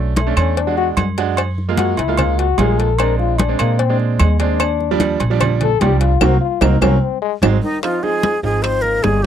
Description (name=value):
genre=Afro-Cuban jazz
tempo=149 BPM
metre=4/4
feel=straight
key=unclear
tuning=A4 = 439 Hz
part: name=trombone with cup mute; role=second line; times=0.0-9.3 s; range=Eb3 to Bb4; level=-21 LUFS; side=left 14 dB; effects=none
part: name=bright upright piano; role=accompaniment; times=0.0-9.3 s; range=F3 to F#4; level=-21 LUFS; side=right 11 dB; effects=none
part: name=upright bass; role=bass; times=0.0-9.3 s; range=G1 to Bb2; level=-17 LUFS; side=right 1 dB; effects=none
part: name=agogo bells and timbales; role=percussion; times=0.2-9.2 s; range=none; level=-24 LUFS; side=right 9 dB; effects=none
part: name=congas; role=percussion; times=0.2-9.2 s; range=none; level=-22 LUFS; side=left 2 dB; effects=none
part: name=cowbell and bongos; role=percussion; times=0.2-9.2 s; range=none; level=-26 LUFS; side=left 8 dB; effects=none
part: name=claves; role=percussion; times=0.4-8.8 s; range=none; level=-25 LUFS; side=left 16 dB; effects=none
part: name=breathy jazz flute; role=melody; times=7.6-9.3 s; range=Eb4 to C5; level=-18 LUFS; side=equal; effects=none
room=little or no reverb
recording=dry, close 1970s-style studio recording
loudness=-14 LUFS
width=side -9 dB against mid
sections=0.0-7.8 A section; 7.8-9.3 B section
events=trombone solo 0.0-7.8; band accent 6.2-7.8; drum fill 7.0-7.8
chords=0.0 Bm7; 0.6 E9; 1.4 Gbmaj7; 3.0 Bb7; 4.6 Ebmaj7; 6.2 Cm7b5; 7.0 Ab7; 7.8 Abmaj13